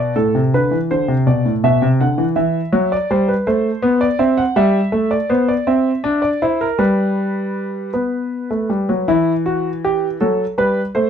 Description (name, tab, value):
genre	classical, baroque-style two-part invention for grand piano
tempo	54 BPM (dotted quarters)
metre	6/8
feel	straight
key	E minor from 4.6 s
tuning	A4 = 438 Hz
part	warm concert grand piano	solo	0.0-11.1 s	A2 to F#5	-15 LUFS	equal	none
room	light reverb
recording	dark, warm production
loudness	-15 LUFS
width	side -8 dB against mid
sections	0.2-9.1 A section; 9.1-11.1 B section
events	none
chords	0.2 Amadd9; 1.3 Bm7; 2.4 Em; 3.5 Am; 4.6 C/G; 5.7 C7; 6.8 G; 7.9 B5; 9.1 Em; 10.2 F#dim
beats	| 0.16 1.27 | 2.38 3.46 | 4.56 5.66 | 6.79 7.93 | 9.08 10.20